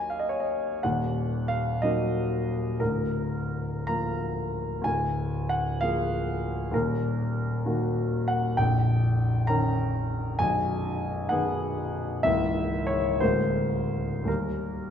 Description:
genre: classical, romantic character piece for solo piano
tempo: 53-68 BPM (dotted quarters)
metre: 6/8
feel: rubato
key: Eb minor, G# minor from 8.6 s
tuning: A4 = 436 Hz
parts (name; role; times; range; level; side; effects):
- warm grand piano; solo; 0.0-14.9 s; A#0 to Bb5; -25 LUFS; left 1 dB; none
room: wet recital hall reverb, RT60 1.6 s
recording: none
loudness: -25 LUFS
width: side -8 dB against mid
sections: 0.8-14.9 A section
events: none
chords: 0.0 Ebm; 2.8 Bb/D; 4.9 Bb7/D; 6.7 Ebm; 8.6 D#7/A#; 10.4 G#m/B; 12.2 A#dim/C#; 13.2 A#7/D; 14.3 D#

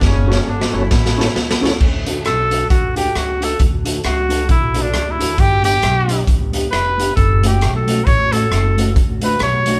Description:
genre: ska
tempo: 134 BPM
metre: 4/4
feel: swing 58% on 8ths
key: D major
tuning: A4 = 441 Hz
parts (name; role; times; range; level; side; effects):
- clear horn section; melody; 0.0-1.6 s; C#3 to E4; -28 LUFS; equal; none
- upright bass; bass; 0.0-9.8 s; F1 to D2; -22 LUFS; equal; none
- raw garage drum kit; drums; 0.0-9.8 s; crash cymbal, hi-hat, kick drum, rim click, snare drum; -20 LUFS; equal; none
- mellow electric guitar; accompaniment; 0.3-9.8 s; A3 to A4; -26 LUFS; equal; analog delay
- tonewheel organ; stabs; 0.3-1.7 s; C#4 to C#5; -26 LUFS; equal; chorus vibrato, stopped rotary speaker
- warm trumpet; melody; 2.3-9.8 s; D4 to C#5; -20 LUFS; equal; none
room: moderate stone room reverb, RT60 1.2 s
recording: band playing live in one room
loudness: -16 LUFS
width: mono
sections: 0.0-1.8 A section; 1.8-9.8 B section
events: drum fill 0.0-1.8; trumpet solo 1.8-9.8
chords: 0.0 F#m; 0.9 A; 1.8 D; 5.4 G; 7.2 F#m; 9.0 D

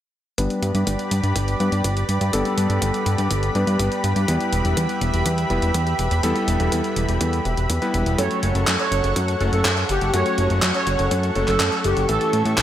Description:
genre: italo disco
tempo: 123 BPM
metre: 4/4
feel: straight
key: unclear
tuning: A4 = 438 Hz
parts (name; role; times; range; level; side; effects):
- lush unison pad; sustained chords; 0.4-12.6 s; G4 to C#6; -26 LUFS; equal; chorus, shimmer reverb
- clear electric grand piano; stabs; 0.4-12.6 s; E3 to B4; -25 LUFS; left 2 dB; low-pass filter, digital delay, shimmer reverb
- fat analog bass; bass; 0.4-12.6 s; E1 to A2; -22 LUFS; equal; none
- electronic kick drum; drums; 0.4-12.6 s; none; -33 LUFS; equal; none
- gated 80s digital drum machine; drums; 0.4-12.6 s; handclaps, hi-hat; -26 LUFS; equal; gated reverb, overdrive, studio reverb
- analog synth brass; melody; 8.2-12.4 s; G4 to C#5; -24 LUFS; right 2 dB; chorus, cassette tape, digital delay, shimmer reverb
room: wet lush hall reverb, RT60 1.9 s, digital ambience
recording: bright 1980s-style digital production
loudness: -18 LUFS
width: side -11 dB against mid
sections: 0.4-12.6 A section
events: filter sweep on electric grand piano 0.4-12.6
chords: 0.4 G; 4.3 Em; 8.2 F#m; 12.1 A

